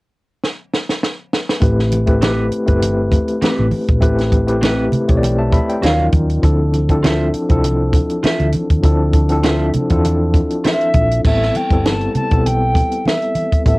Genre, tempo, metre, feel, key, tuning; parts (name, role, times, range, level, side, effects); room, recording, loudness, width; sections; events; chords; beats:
lush 1970s-style soul; 100 BPM; 4/4; swing 54% on 16ths; A minor; A4 = 440 Hz
compact cocktail drum kit; drums; 0.4-13.8 s; crash cymbal, hi-hat, kick drum, snare drum; -16 LUFS; equal; cassette tape
tine electric piano; accompaniment; 1.6-13.8 s; F3 to B5; -18 LUFS; left 1 dB; overdrive, fast tremolo
hollow-body short-scale fingered electric bass; bass; 1.6-13.8 s; G1 to E2; -18 LUFS; equal
congas; percussion; 1.6-13.5 s; -24 LUFS; right 1 dB
electric guitar through a small old amp; riff; 2.2-10.9 s; C4 to E#5; -20 LUFS; right 1 dB
silver concert flute; melody; 10.6-13.8 s; E5 to A5; -19 LUFS; equal; cassette tape
light reverb; home recording on cassette; -13 LUFS; side -22 dB against mid
0.0-1.6 A section; 1.6-11.2 B section; 11.2-13.8 C section
drum fill 0.4-1.6
0.0 N.C.; 1.6 Am9; 5.8 D#m9; 6.4 Dm9; 11.2 Am9
0.42 1.02 | 1.62 2.22 2.82 3.42 | 4.03 4.63 5.23 5.83 | 6.43 7.03 7.63 8.24 | 8.84 9.44 10.04 10.64 | 11.25 11.85 12.45 13.05 | 13.65